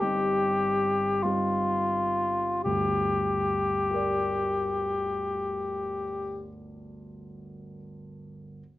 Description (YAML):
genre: classical, romantic duo for cor anglais and grand piano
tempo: 40-53 BPM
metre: 3/4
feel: rubato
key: G minor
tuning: A4 = 440 Hz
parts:
  - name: dark cor anglais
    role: melody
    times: 0.0-6.5 s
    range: F4 to G4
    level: -26 LUFS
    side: left 2 dB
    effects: none
  - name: dark baby grand piano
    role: accompaniment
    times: 0.0-8.6 s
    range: G1 to D5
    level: -32 LUFS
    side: right 1 dB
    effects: none
room: light reverb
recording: worn, warbling old tape, cassette tape, warbly pitch drift, nothing above 7.7 kHz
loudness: -25 LUFS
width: side -16 dB against mid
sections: 0.0-2.6 A section; 2.6-6.4 B section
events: slowing down 0.0-2.6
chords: 0.0 Cm/G; 2.6 Gm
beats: 0.00 1.23 | 2.64 3.90 5.18